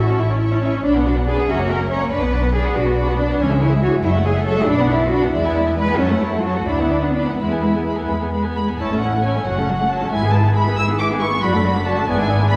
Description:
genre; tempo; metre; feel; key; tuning
quick classical-period movement for string orchestra; 92 BPM (dotted quarters); 6/8; rubato; A major; A4 = 437 Hz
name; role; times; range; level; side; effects
muted symphonic violin section; melody; 0.0-12.6 s; E5 to E6; -28 LUFS; equal; none
muted symphonic violin section; second line; 0.0-12.6 s; F#4 to G#5; -29 LUFS; equal; none
muted symphonic viola section; accompaniment; 0.0-12.6 s; E3 to G#4; -25 LUFS; equal; none
muted studio cello section; bass; 0.0-12.6 s; F#2 to C#5; -23 LUFS; equal; none
muted symphonic double bass section; bass; 0.0-12.6 s; F#1 to F#2; -24 LUFS; equal; none
room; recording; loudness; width
wet recital hall reverb, RT60 1.5 s; heard from further back in the room; -18 LUFS; mono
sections
0.0-8.8 A section; 8.8-12.6 B section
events
none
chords
0.0 A; 0.8 Bm; 1.5 F#7; 2.1 Bm; 3.4 C#m; 4.0 F#m7; 4.7 Bm; 5.3 E7; 6.0 F#m; 6.7 Bm/D; 7.4 E; 8.8 A; 9.5 F#m; 10.1 E/G#; 11.4 D/F#

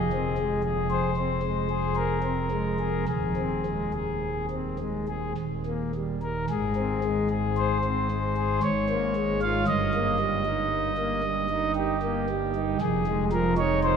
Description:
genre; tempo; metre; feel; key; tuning
classical, chorale-style piece for pipe organ; 52-59 BPM; 3/4; rubato; Ab major; A4 = 440 Hz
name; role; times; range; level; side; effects
pipe organ, principal; solo; 0.0-14.0 s; Eb1 to F5; -24 LUFS; equal; none
room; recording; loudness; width
wet cathedral reverb, RT60 5.0 s; none; -24 LUFS; side -7 dB against mid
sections
0.0-6.5 A section; 6.5-14.0 A section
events
none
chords
0.0 Fm; 3.1 Ab/Eb; 5.4 Eb; 6.5 Ab; 8.6 Bbm7/Ab; 9.7 Eb/G; 12.8 Fm7

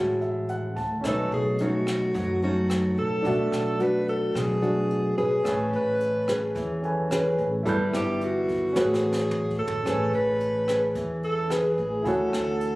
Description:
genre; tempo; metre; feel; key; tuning
bossa nova; 109 BPM; 4/4; straight; A major; A4 = 440 Hz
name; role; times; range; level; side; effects
nylon-string guitar; accompaniment; 0.0-12.8 s; A2 to B4; -26 LUFS; equal; none
warm baby grand piano; accompaniment; 0.0-12.8 s; A3 to G6; -32 LUFS; right 1 dB; none
upright bass; bass; 0.0-12.8 s; G1 to F#2; -31 LUFS; equal; none
jazz brush drum kit; drums; 0.2-12.7 s; hi-hat, kick drum, rim click, snare drum, toms; -37 LUFS; equal; none
breathy alto saxophone; melody; 1.1-12.8 s; F#4 to B4; -27 LUFS; equal; none
room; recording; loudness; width
little or no reverb; recorded on a phone in the room, club reverb; -23 LUFS; side -19 dB against mid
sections
0.0-9.9 A section; 9.9-12.8 A section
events
grand piano fill 0.0-1.0; alto saxophone solo 0.0-12.8; drum fill 8.8-9.9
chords
0.0 Dmaj9#11; 1.0 B9; 3.2 E9sus4/B; 5.5 Amaj9; 7.7 G69; 8.8 A69; 9.9 Amaj9; 12.1 Dmaj9#11

